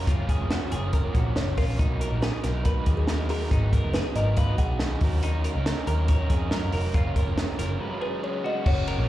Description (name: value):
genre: jangly indie pop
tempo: 140 BPM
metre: 4/4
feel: straight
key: F# major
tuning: A4 = 439 Hz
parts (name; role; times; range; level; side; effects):
- raw garage guitar; accompaniment; 0.0-9.1 s; F#2 to A#4; -32 LUFS; right 4 dB; overdrive, slapback echo
- twelve-string electric guitar; arpeggios; 0.0-9.1 s; D#4 to C#5; -35 LUFS; left 3 dB; spring reverb, slapback echo
- vintage muted picked electric bass; bass; 0.0-9.1 s; E#1 to F#2; -26 LUFS; equal; none
- compact cocktail drum kit; drums; 0.1-9.0 s; crash cymbal, hi-hat, kick drum, ride cymbal, snare drum; -25 LUFS; equal; none
- kalimba; melody; 1.4-5.0, 8.0-9.1 s; G#4 to F#5; -33 LUFS; left 2 dB; slapback echo
room: studio reverb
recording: live gig heard through the venue's PA, club reverb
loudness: -23 LUFS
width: side -14 dB against mid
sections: 0.0-8.7 A section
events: break 7.8-8.7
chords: 0.1 F#maj7; 1.8 Bmaj7; 3.5 G#m7; 5.0 D#m7; 6.9 F#maj7; 7.8 C#sus4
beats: | 0.08 0.51 0.93 1.36 | 1.79 2.22 2.65 3.08 | 3.51 3.94 4.37 4.80 | 5.23 5.66 6.09 6.52 | 6.95 7.37 7.80 8.23 | 8.66